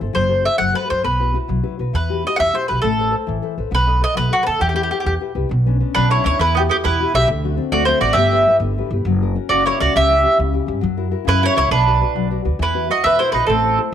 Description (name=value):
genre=italian folk, Italian serenade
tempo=136 BPM (dotted quarters)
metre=6/8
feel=straight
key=E harmonic minor, B harmonic minor from 5.5 s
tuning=A4 = 440 Hz
part: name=nylon-string guitar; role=accompaniment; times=0.0-13.9 s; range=B2 to D#5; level=-24 LUFS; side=left 12 dB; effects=none
part: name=upright bass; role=bass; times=0.0-13.8 s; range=F#1 to G2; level=-20 LUFS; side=right 1 dB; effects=none
part: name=mandolin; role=melody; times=0.1-13.8 s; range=F#4 to F#5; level=-17 LUFS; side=equal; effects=none
part: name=mandolin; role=second line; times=5.9-13.8 s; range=B3 to B4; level=-22 LUFS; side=right 13 dB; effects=none
room=light reverb, studio reverb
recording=1960s-style stereo with parts hard left and right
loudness=-15 LUFS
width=side -9 dB against mid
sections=0.0-5.5 A section; 5.5-12.6 B section; 12.6-13.9 A section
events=none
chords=0.2 F#dim; 1.0 Bsus4; 1.9 Emadd9; 2.8 Amadd9; 3.7 B7; 4.6 Em; 5.5 Bmadd9; 6.4 Emadd9; 7.3 D7; 8.2 G6; 9.1 F#; 10.0 C#dim; 10.8 F#7; 11.7 Bm; 12.6 Esus2